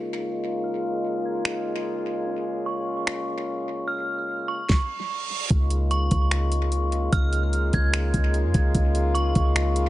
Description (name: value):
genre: hip hop, atmospheric cloud-rap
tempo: 148 BPM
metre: 4/4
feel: half-time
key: Db major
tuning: A4 = 440 Hz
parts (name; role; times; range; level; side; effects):
- metallic FM bell; melody; 0.0-9.9 s; Db6 to Ab6; -31 LUFS; right 2 dB; chorus, low-pass filter, tape echo
- clear French horn section; sustained chords; 0.0-9.9 s; Db3 to F4; -28 LUFS; left 1 dB; low-pass filter
- smooth R&B drum kit; drums; 1.5-9.9 s; finger snaps, hi-hat, kick drum, snare drum; -24 LUFS; equal; tape echo
- reverse cymbal; sound effects; 4.9-5.5 s; none; -30 LUFS; right 7 dB; none
- clean 808-style bass; bass; 5.5-9.9 s; Db2 to F2; -22 LUFS; equal; none
room: light reverb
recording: echo-heavy mix, nothing above 10.9 kHz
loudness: -22 LUFS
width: side -15 dB against mid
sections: 0.0-5.5 A section; 5.5-9.9 B section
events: filter sweep 0.0-5.5; reverse cymbal 4.9-5.5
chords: 0.0 Db6